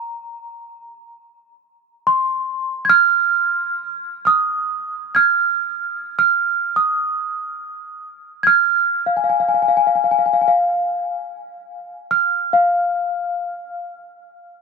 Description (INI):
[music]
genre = mongolian traditional, Mongolian folk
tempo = free time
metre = none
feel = none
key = F yu mode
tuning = A4 = 440 Hz
[part]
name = celesta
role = solo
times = 0.0-14.1 s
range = F5 to Ab6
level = -16 LUFS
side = right 1 dB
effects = none
[sound]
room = moderate huge ambient reverb, RT60 5.0 s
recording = none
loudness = -16 LUFS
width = side -4 dB against mid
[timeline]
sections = 0.0-14.3 A section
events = none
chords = none